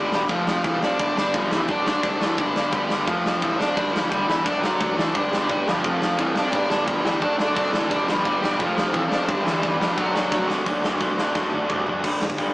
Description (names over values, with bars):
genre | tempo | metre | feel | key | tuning
punk rock | 174 BPM | 4/4 | straight | unclear | A4 = 441 Hz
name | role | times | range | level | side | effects
dark smooth lead guitar | melody | 0.0-10.5 s | E3 to D5 | -25 LUFS | equal | overdrive
distorted electric guitar | riff | 0.0-12.5 s | F2 to D4 | -25 LUFS | left 1 dB | overdrive
fuzz guitar | riff | 0.0-12.0 s | F3 to A4 | -32 LUFS | equal | none
fuzz picked electric bass | bass | 0.0-12.5 s | E1 to C2 | -31 LUFS | equal | overdrive
big rock drum kit | drums | 0.1-12.5 s | crash cymbal, hi-hat, kick drum, snare drum, toms | -26 LUFS | equal | none
raw garage guitar | riff | 5.1-12.5 s | G2 to A4 | -28 LUFS | right 1 dB | overdrive
room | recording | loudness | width
light reverb | rough rehearsal-room recording, tube saturation, small speaker sound | -20 LUFS | side -20 dB against mid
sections
0.0-10.7 A section; 10.7-12.0 B section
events
drum fill 10.3-10.7, 11.4-12.0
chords
0.3 F; 1.0 G; 1.7 D/F#; 2.4 G; 3.1 F; 3.8 G; 4.5 D/F#; 5.1 G; 5.8 F; 6.5 G; 7.2 D/F#; 7.9 G; 8.6 F; 9.3 G; 10.0 D/F#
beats
0.29 0.64 | 0.98 1.33 1.68 2.03 | 2.37 2.72 3.07 3.41 | 3.76 4.11 4.45 4.80 | 5.14 5.49 5.84 6.18 | 6.53 6.87 7.22 7.56 | 7.91 8.25 8.59 8.94 | 9.28 9.63 9.97 10.32 | 10.66 11.01 11.35 11.70 | 12.04 12.39